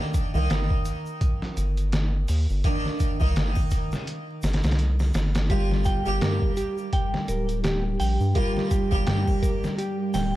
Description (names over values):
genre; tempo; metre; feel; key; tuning
trip hop; 84 BPM; 4/4; swing 58% on 16ths; G minor; A4 = 440 Hz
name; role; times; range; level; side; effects
harpsichord; accompaniment; 0.0-10.4 s; Eb3 to G4; -31 LUFS; right 1 dB; harmonic tremolo, tape echo
trip hop sampler-style drum kit; drums; 0.0-10.3 s; hi-hat, kick drum, snare drum; -26 LUFS; equal; overdrive
egg shaker and triangle; percussion; 0.1-10.3 s; none; -49 LUFS; left 1 dB; none
round analog bass; bass; 0.3-10.4 s; D1 to G2; -24 LUFS; equal; none
string machine, cellos; sustained chords; 5.5-10.4 s; G3 to G4; -30 LUFS; right 1 dB; ensemble chorus
semi-hollow electric guitar; arpeggios; 5.5-10.4 s; G4 to G5; -31 LUFS; equal; vintage 12-bit sampler grit, tape echo
room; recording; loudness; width
light reverb; dark, warm production, vinyl crackle; -22 LUFS; side -15 dB against mid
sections
0.0-10.4 A section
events
none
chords
0.0 Cm9; 5.5 Gm7